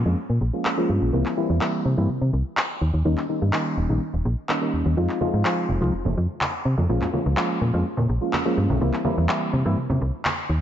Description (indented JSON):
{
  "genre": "filtered disco house",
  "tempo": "125 BPM",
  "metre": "4/4",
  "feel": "straight",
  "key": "unclear",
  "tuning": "A4 = 443 Hz",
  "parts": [
    { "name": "reed electric piano", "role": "accompaniment", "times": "0.0-9.8 s", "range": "Eb3 to F4", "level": "-25 LUFS", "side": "equal", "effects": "phaser, low-pass filter" },
    { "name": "slap-like FM bass", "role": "bass", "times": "0.0-10.6 s", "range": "Eb1 to C3", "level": "-22 LUFS", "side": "equal", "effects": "low-pass filter" },
    { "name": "electronic handclaps", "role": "drums", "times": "0.7-10.3 s", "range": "none", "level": "-28 LUFS", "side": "equal", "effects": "studio reverb" },
    { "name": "tube shaker and congas", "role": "percussion", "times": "5.0-10.6 s", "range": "none", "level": "-30 LUFS", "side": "right 2 dB", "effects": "low-pass filter on perc" }
  ],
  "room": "moderate plate reverb, RT60 1.7 s, digital ambience",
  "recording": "dreamy mix soaked in reverb, nothing above 7.7 kHz",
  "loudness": "-20 LUFS",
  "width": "side -10 dB against mid",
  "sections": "0.0-10.6 A section",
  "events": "filter sweep 0.0-10.6",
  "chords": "0.0 Bbm7; 1.1 C7; 2.8 Eb7; 5.0 Fm7; 6.9 Bbm7; 8.8 C7"
}